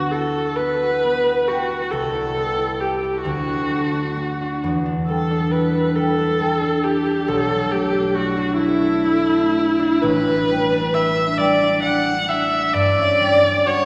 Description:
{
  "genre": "classical, impressionist duo for viola and harp",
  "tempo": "44 BPM (dotted quarters)",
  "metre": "6/8",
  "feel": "uneven beats, rubato",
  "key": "D major",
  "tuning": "A4 = 440 Hz",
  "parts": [
    { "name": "rich viola", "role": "melody", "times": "0.0-13.9 s", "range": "E4 to F#5", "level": "-21 LUFS", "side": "equal", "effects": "none" },
    { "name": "concert harp", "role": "accompaniment", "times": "0.0-13.9 s", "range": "A1 to B4", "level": "-24 LUFS", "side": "equal", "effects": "none" }
  ],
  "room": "wet concert hall reverb, RT60 2.2 s",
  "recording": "heard from further back in the room, nothing above 10.9 kHz",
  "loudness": "-19 LUFS",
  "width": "mono",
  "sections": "0.0-13.9 A section",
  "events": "none",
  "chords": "0.0 D69; 1.9 Cmaj7; 3.3 D; 4.6 Em7; 7.3 Bm7; 10.0 A11; 12.8 Gmaj7(no3)"
}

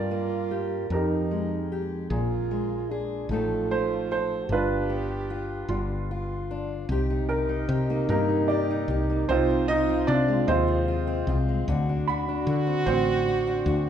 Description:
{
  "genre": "acoustic folk-pop ballad",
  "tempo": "50 BPM (dotted quarters)",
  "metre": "6/8",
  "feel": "straight",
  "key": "C minor",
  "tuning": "A4 = 440 Hz",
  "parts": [
    { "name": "clear upright piano", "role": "melody", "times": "0.0-13.9 s", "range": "Bb3 to Eb5", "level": "-27 LUFS", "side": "right 2 dB", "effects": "none" },
    { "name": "clear French horn", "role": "second line", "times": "0.0-13.9 s", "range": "D4 to G4", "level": "-31 LUFS", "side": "right 5 dB", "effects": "none" },
    { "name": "fingerpicked steel-string acoustic guitar", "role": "accompaniment", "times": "0.0-13.9 s", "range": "F2 to A4", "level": "-30 LUFS", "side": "left 3 dB", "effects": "none" },
    { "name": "woody fretless electric bass", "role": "bass", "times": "0.0-13.9 s", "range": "G1 to D3", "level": "-28 LUFS", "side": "equal", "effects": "none" },
    { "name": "felt-muted upright piano", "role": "arpeggios", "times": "2.1-13.3 s", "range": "F4 to B5", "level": "-33 LUFS", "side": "right 1 dB", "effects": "none" }
  ],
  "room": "moderate recital hall reverb, RT60 1.7 s",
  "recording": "recorded in a church or concert hall",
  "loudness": "-23 LUFS",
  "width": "side -9 dB against mid",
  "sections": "0.0-6.9 A section; 6.9-13.9 B section",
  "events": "none",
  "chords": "0.0 Gm7; 0.9 Fm11; 2.1 Bb5; 3.3 F7/A; 4.5 G7; 6.9 Cm7; 9.3 Ab6/C; 11.7 D7"
}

